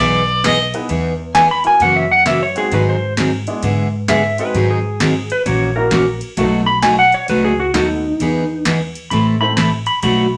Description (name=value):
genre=country, western swing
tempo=131 BPM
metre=4/4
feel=swing 65% on 8ths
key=E major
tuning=A4 = 440 Hz
part: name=clear fiddle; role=melody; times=0.0-0.6 s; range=D5 to D#5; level=-18 LUFS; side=equal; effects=none
part: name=picked steel-string acoustic guitar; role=accompaniment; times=0.0-10.3 s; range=B2 to A#4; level=-20 LUFS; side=equal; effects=none
part: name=upright bass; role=bass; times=0.0-10.4 s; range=A1 to G#2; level=-25 LUFS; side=equal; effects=none
part: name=soft vintage rhythm box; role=drums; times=0.4-10.2 s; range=hi-hat, kick drum, ride cymbal, snare drum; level=-27 LUFS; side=equal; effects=none
part: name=clear upright piano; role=accompaniment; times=0.7-9.6 s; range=G#3 to C5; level=-25 LUFS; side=equal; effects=none
part: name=clean lap steel guitar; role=second line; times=1.3-10.4 s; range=D#4 to B5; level=-18 LUFS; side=equal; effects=none
room=wet studio reverb, RT60 0.5 s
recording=none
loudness=-16 LUFS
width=mono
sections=0.9-10.4 A section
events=electric slide guitar solo 0.9-10.4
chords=0.0 Emaj7; 1.8 F#7; 2.7 G#7; 5.5 F#7/A#; 6.4 B7; 8.2 Emaj7; 9.1 Am